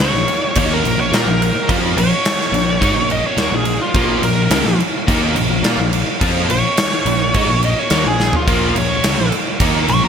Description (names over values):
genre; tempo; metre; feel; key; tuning
hard rock; 106 BPM; 4/4; straight; Bb minor; A4 = 441 Hz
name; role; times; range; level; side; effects
bluesy overdriven lead guitar; melody; 0.0-10.1 s; F4 to Db6; -20 LUFS; equal; distortion, ping-pong delay
tonewheel organ; sustained chords; 0.0-10.1 s; Bb3 to Db5; -29 LUFS; equal; none
crunchy overdriven guitar; riff; 0.0-10.1 s; Bb2 to F4; -23 LUFS; left 9 dB; wide subtle chorus
overdriven semi-hollow guitar; riff; 0.0-10.1 s; Bb2 to F4; -24 LUFS; right 9 dB; ensemble chorus
sludgy distorted guitar; riff; 0.0-10.1 s; Bb2 to F4; -24 LUFS; left 1 dB; none
picked electric bass; bass; 0.0-10.1 s; Bb1 to Bb2; -22 LUFS; equal; none
huge arena drum kit; drums; 0.0-10.0 s; crash cymbal, kick drum, snare drum, toms; -18 LUFS; equal; gated reverb
room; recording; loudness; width
light reverb, small room ambience; bright 1980s-style digital production; -13 LUFS; side -7 dB against mid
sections
0.0-10.1 A section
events
lead electric guitar solo 0.0-10.1; drum fill 8.2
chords
0.0 Bbm